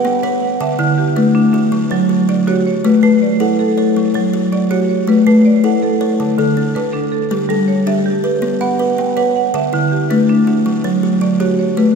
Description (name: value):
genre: southern african traditional, mbira-style interlocking cycle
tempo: 108 BPM (dotted quarters)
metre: 12/8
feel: straight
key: unclear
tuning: A4 = 439 Hz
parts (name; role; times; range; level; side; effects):
- buzzing kalimba; arpeggios; 0.0-12.0 s; D3 to F#5; -14 LUFS; left 3 dB; none
- marimba with hard mallets; arpeggios; 0.0-12.0 s; D3 to G5; -16 LUFS; right 4 dB; none
room: wet cathedral reverb, RT60 4.5 s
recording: recorded in a church or concert hall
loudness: -12 LUFS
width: side -5 dB against mid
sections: 0.0-12.0 A section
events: none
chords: 0.0 B5; 0.6 D; 1.7 F#5; 2.8 A; 4.0 F#m; 5.1 A; 6.2 D5; 7.3 G; 8.4 B5; 9.5 D; 10.7 F#5